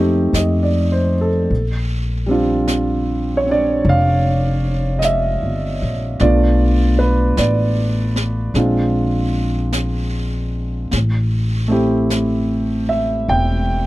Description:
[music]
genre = jazz ballad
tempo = 51 BPM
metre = 4/4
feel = swing 66% on 8ths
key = unclear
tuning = A4 = 442 Hz
[part]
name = warm upright piano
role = accompaniment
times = 0.0-13.9 s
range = G3 to G5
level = -18 LUFS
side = right 1 dB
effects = none
[part]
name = upright bass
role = bass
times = 0.0-13.9 s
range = E1 to F2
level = -18 LUFS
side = equal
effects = none
[part]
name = jazz brush drum kit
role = drums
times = 0.3-13.9 s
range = brushed snare drum, hi-hat, snare drum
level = -30 LUFS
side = equal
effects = none
[sound]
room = little or no reverb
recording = dry, close 1970s-style studio recording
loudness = -15 LUFS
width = side -17 dB against mid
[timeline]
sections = 0.0-13.9 A section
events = none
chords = 0.0 F9; 1.5 Bb6; 6.2 Bm7b5; 8.5 Bb9; 10.9 Am7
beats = 0.33 | 1.50 2.67 3.85 5.02 | 6.20 7.37 8.54 9.72 | 10.91 12.10 13.28

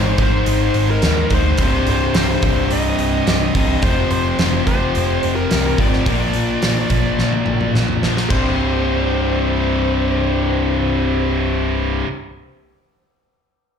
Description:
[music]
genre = hard rock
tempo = 107 BPM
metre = 4/4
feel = straight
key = C minor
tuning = A4 = 440 Hz
[part]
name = bluesy overdriven lead guitar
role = melody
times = 0.0-11.3 s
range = Bb4 to Eb5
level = -24 LUFS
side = equal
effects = distortion, slapback echo, analog delay
[part]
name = distorted electric guitar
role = riff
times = 0.0-12.1 s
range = C2 to Bb3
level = -21 LUFS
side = left 10 dB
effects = overdrive, slapback echo
[part]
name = scooped high-gain guitar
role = riff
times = 0.0-12.1 s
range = C2 to Bb3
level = -23 LUFS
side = right 12 dB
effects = distortion
[part]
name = overdriven picked electric bass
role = bass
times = 0.0-12.0 s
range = C1 to Eb2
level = -21 LUFS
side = right 1 dB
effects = none
[part]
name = huge arena drum kit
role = drums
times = 0.2-8.4 s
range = crash cymbal, hi-hat, kick drum, snare drum, toms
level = -21 LUFS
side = right 1 dB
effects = none
[sound]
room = light reverb, small room ambience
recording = live gig heard through the venue's PA, club reverb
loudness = -15 LUFS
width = side -7 dB against mid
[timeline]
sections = 0.0-8.3 A section; 8.3-10.6 B section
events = drum fill 7.2-8.3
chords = 0.0 Ab; 1.6 Cm; 3.8 F5; 6.1 Bb; 8.3 C5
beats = 0.47 1.03 | 1.59 2.15 2.71 3.27 | 3.83 4.39 4.95 5.51 | 6.07 6.63 7.19 7.75 | 8.31 8.87 9.43 9.99

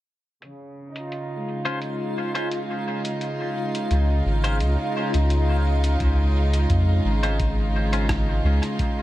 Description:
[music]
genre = ambient dub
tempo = 86 BPM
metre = 4/4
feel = swing 54% on 16ths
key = unclear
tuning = A4 = 443 Hz
[part]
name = rich chamber string section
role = sustained chords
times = 0.4-9.0 s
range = Db3 to F4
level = -27 LUFS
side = right 1 dB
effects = low-pass filter
[part]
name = lo-fi sampler-style drum kit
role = drums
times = 0.4-8.9 s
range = hi-hat, rim click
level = -35 LUFS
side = left 1 dB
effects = low-pass filter on hats, studio reverb, low-pass filter on snare, dub echo
[part]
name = backwards swelling texture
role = texture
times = 1.3-6.0 s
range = F4 to F5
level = -32 LUFS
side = left 1 dB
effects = built-in reverb
[part]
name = clean electric guitar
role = stabs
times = 1.7-8.1 s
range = Db4 to C5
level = -33 LUFS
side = left 2 dB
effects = wide subtle chorus, low-pass filter, dub echo
[part]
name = soft dub sub bass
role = bass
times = 3.9-8.6 s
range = Ab1 to F2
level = -20 LUFS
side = equal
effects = none
[part]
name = electronic kick drum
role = drums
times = 6.0-8.9 s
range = none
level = -27 LUFS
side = equal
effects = studio reverb
[sound]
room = light reverb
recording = echo-heavy mix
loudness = -20 LUFS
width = side -15 dB against mid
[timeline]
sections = 0.4-6.0 A section; 6.0-9.0 B section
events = filter sweep on string section 0.4-6.0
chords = 0.4 Db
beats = | 0.42 1.12 1.82 2.51 | 3.21 3.91 4.61 5.30 | 6.00 6.70 7.40 8.10 | 8.79

